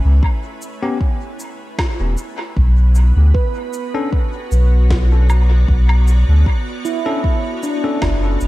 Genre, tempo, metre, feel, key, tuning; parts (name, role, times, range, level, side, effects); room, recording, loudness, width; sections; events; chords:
ambient dub; 77 BPM; 4/4; straight; B minor; A4 = 438 Hz
soft additive organ-like pad; sustained chords; 0.0-8.5 s; A3 to D5; -29 LUFS; right 1 dB; ensemble chorus, built-in reverb
handpan; arpeggios; 0.0-8.5 s; C#4 to B4; -27 LUFS; right 3 dB; dub echo
warm sub bass; bass; 0.0-8.5 s; E1 to D2; -11 LUFS; equal
electronic kick drum; drums; 0.2-8.2 s; -18 LUFS; equal
electronic shaker, snare drum and woodblock; drums; 0.6-8.5 s; -28 LUFS; equal; overdrive, dub echo
bell-like tine electric piano; stabs; 0.8-8.0 s; B3 to A4; -26 LUFS; left 3 dB; fast stereo tremolo, dub echo
light reverb; -14 LUFS; side -17 dB against mid
0.0-8.5 A section
fade-in on ambient pad 0.0-8.5
0.0 Aadd9; 2.6 Bm